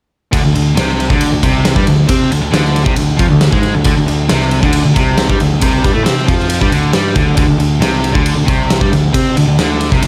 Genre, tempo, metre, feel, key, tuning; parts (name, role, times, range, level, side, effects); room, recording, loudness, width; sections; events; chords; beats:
hard rock; 136 BPM; 4/4; straight; A4 = 440 Hz
overdriven electric guitar; riff; 0.3-10.1 s; C3 to C4; -18 LUFS; equal
overdriven electric guitar; riff; 0.3-10.1 s; C3 to C4; -21 LUFS; equal
picked electric bass; bass; 0.3-10.1 s; C2 to C3; -19 LUFS; equal
big rock drum kit; drums; 0.3-10.1 s; kick drum, ride cymbal, snare drum; -16 LUFS; equal
light reverb, studio reverb; -12 LUFS; mono
0.3-10.1 A section
0.3 D5
| 0.33 0.77 1.21 1.65 | 2.09 2.53 2.97 3.41 | 3.85 4.30 4.74 5.18 | 5.62 6.06 6.50 6.94 | 7.38 7.82 8.27 8.71 | 9.15 9.59 10.03